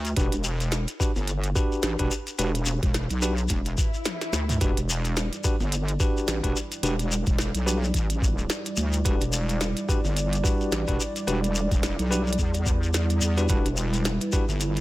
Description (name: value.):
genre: glitch hop.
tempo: 108 BPM.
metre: 4/4.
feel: swing 58% on 16ths.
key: E minor.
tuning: A4 = 440 Hz.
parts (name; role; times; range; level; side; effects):
wobble bass; bass; 0.0-14.8 s; E1 to E2; -26 LUFS; equal; chorus, tube saturation.
glitchy drum kit; drums; 0.0-14.8 s; hi-hat, snare drum, toms; -31 LUFS; equal; none.
shekere; percussion; 0.1-14.8 s; none; -33 LUFS; left 3 dB; none.
bell-like tine electric piano; stabs; 0.2-14.4 s; D4 to B4; -32 LUFS; equal; fast stereo tremolo, sidechain pumping, low-pass filter, dub echo.
electronic kick drum; drums; 0.2-14.5 s; none; -26 LUFS; equal; none.
swell; sound effects; 3.7-4.6 s; none; -37 LUFS; left 2 dB; none.
dark analog pad; sustained chords; 4.6-14.8 s; G3 to D5; -32 LUFS; right 1 dB; chorus, sidechain pumping.
room: little or no reverb.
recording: none.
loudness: -23 LUFS.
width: side -17 dB against mid.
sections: 0.0-14.8 A section.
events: swell 3.7-4.6; drum fill 4.1-4.6.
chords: 0.0 Em7.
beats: | 0.17 0.72 1.28 1.83 | 2.39 2.94 3.50 4.06 | 4.61 5.17 5.72 6.28 | 6.83 7.39 7.95 8.50 | 9.06 9.61 10.17 10.72 | 11.28 11.83 12.39 12.95 | 13.50 14.06 14.61.